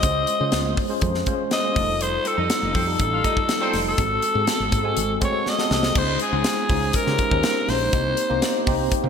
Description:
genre	polished 1980s jazz-funk pop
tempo	122 BPM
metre	4/4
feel	straight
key	unclear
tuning	A4 = 441 Hz
part	growling alto saxophone	melody	0.0-8.7 s	Ab4 to Eb5	-24 LUFS	left 1 dB	none
part	tine electric piano	accompaniment	0.0-9.1 s	G3 to Ab5	-25 LUFS	left 1 dB	overdrive, fast stereo tremolo, wide subtle chorus
part	woody fretless electric bass	bass	0.0-9.1 s	F1 to Db3	-26 LUFS	equal	none
part	modern studio drum kit	drums	0.0-9.0 s	crash cymbal, hi-hat, kick drum, snare drum	-24 LUFS	equal	gated reverb
part	congas	percussion	0.5-5.8 s	none	-39 LUFS	right 4 dB	none
part	clear horn section	second line	2.2-3.8 s	C4 to F5	-32 LUFS	equal	ping-pong delay
room	moderate lush hall reverb, RT60 1.8 s, small room reverb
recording	bright 1980s-style digital production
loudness	-19 LUFS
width	side -7 dB against mid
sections	0.0-6.0 A section; 6.0-9.1 B section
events	drum fill 5.5-6.0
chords	0.0 Dbmaj7; 1.8 F9; 4.0 Ab7b9; 6.0 Dbmaj9; 7.9 Cm7

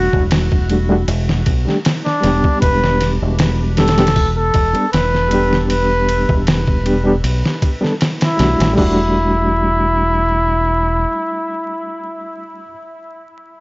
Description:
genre	trip hop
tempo	78 BPM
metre	4/4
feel	swing 53% on 16ths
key	E minor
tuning	A4 = 440 Hz
part	trumpet with bucket mute	melody	0.0-12.6 s	D4 to B4	-19 LUFS	equal	vintage 12-bit sampler grit, dub echo
part	reed electric piano	accompaniment	0.0-12.7 s	G3 to A4	-20 LUFS	equal	fast tremolo, vintage 12-bit sampler grit, tape echo
part	deep dub fingered electric bass	bass	0.0-11.0 s	E1 to B1	-18 LUFS	equal	none
part	trip hop sampler-style drum kit	drums	0.1-8.9 s	crash cymbal, hi-hat, kick drum, ride cymbal, snare drum	-17 LUFS	equal	none
room	digital ambience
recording	dry, gritty hardware recording, vinyl crackle, nothing above 7.6 kHz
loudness	-13 LUFS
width	side -26 dB against mid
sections	0.0-8.8 A section; 8.8-11.9 B section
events	none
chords	0.0 Em11

